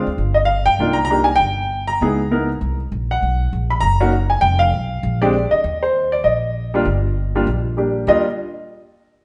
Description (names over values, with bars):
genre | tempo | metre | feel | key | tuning
jazz piano trio | 198 BPM | 4/4 | swing 61% on 8ths | Eb major | A4 = 439 Hz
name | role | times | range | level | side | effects
clear upright piano | melody | 0.0-8.3 s | G3 to B5 | -20 LUFS | equal | none
upright bass | bass | 0.0-8.2 s | F1 to G2 | -23 LUFS | equal | none
room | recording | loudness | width
wet stone room reverb, RT60 1.3 s | band playing live in one room, nothing above 10.3 kHz | -18 LUFS | mono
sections
0.0-8.1 A section; 8.1-9.2 B section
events
none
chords
0.2 Ebadd9/G (rootless); 0.8 Cm9; 2.0 Dbm7; 2.6 Bbsus2; 3.2 Bmaj7(no3); 4.4 G7/F; 5.0 Bb; 5.6 Ebmaj7; 8.1 N.C.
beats
0.19 0.49 | 0.80 1.10 1.40 1.71 | 2.01 2.31 2.62 2.92 | 3.22 3.52 3.83 4.13 | 4.43 4.74 5.04 5.34 | 5.65 5.95 6.25 6.55 | 6.86 7.16 7.46 7.77 | 8.07